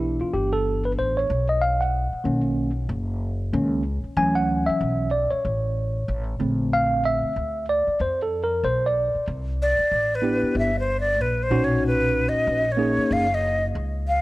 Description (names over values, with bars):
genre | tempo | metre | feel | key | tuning
hip hop, jazz-hop | 94 BPM | 4/4 | swing 60% on 16ths | unclear | A4 = 439 Hz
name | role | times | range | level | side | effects
tine electric piano | accompaniment | 0.0-13.3 s | A#2 to Ab5 | -23 LUFS | equal | auto-pan
upright bass | bass | 0.0-14.2 s | F#1 to F2 | -27 LUFS | equal | none
breathy hollow jazz flute | melody | 9.6-14.2 s | B4 to F5 | -22 LUFS | equal | none
room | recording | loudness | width
light reverb, small room ambience | worn, warbling old tape, cassette tape, warbly pitch drift | -21 LUFS | side -18 dB against mid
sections
0.0-9.3 A section; 9.3-14.2 A section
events
tine electric piano solo 0.0-9.3; flute solo 9.3-14.2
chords
0.0 Cmaj9; 1.3 Bmaj9; 4.2 Dmaj9; 6.4 Bbmaj9; 9.3 Cmaj9; 11.5 Bmaj9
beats
0.34 0.98 | 1.62 2.25 2.89 3.53 | 4.17 4.81 5.45 6.08 | 6.72 7.36 8.00 8.64 | 9.28 9.91 10.55 11.19 | 11.83 12.47 13.11 13.74